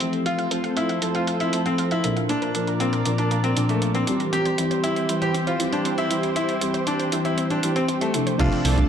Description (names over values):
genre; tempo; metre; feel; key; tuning
italo disco; 118 BPM; 4/4; straight; C mixolydian; A4 = 438 Hz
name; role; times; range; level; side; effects
bright grand piano; melody; 0.0-8.8 s; A3 to G4; -25 LUFS; left 2 dB; ping-pong delay
lush unison pad; sustained chords; 0.0-8.9 s; E3 to A5; -29 LUFS; right 2 dB; chorus
analog synth brass; stabs; 0.0-8.9 s; Bb2 to Bb4; -25 LUFS; left 1 dB; chorus, cassette tape
detuned 8-bit digital drum machine; drums; 0.0-8.9 s; crash cymbal, hi-hat; -32 LUFS; right 2 dB; low-pass filter on hats, low-pass filter on cymbals, low-pass filter on room
wide unison pluck; arpeggios; 0.3-8.9 s; Bb3 to F5; -32 LUFS; right 5 dB; ping-pong delay
fat analog bass; bass; 8.4-8.8 s; C2; -21 LUFS; right 1 dB; none
electronic kick drum; drums; 8.4-8.9 s; none; -24 LUFS; right 1 dB; none
room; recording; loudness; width
moderate lush hall reverb, RT60 1.9 s, digital ambience; dark, warm production; -20 LUFS; side -8 dB against mid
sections
0.0-8.4 A section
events
filter sweep on analog synth pad 0.0-8.4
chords
0.3 F; 2.3 Bb; 4.3 C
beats
| 0.26 0.77 1.28 1.78 | 2.29 2.80 3.31 3.82 | 4.33 4.84 5.34 5.85 | 6.36 6.87 7.38 7.89 | 8.39